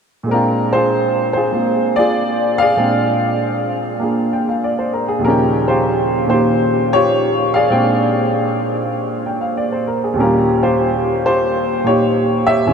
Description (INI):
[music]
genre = jazz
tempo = 97 BPM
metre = 4/4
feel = swing 69% on 8ths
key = Bb mixolydian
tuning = A4 = 440 Hz
[part]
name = clear upright piano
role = solo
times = 0.2-12.7 s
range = Eb2 to G5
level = -14 LUFS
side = equal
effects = none
[sound]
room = wet huge ambient reverb, RT60 8.5 s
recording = in a vast, echoing space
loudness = -14 LUFS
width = side -6 dB against mid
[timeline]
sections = 0.3-12.7 A section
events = none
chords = 0.3 Bb13; 5.2 Eb13; 7.7 Bb13; 10.2 Eb13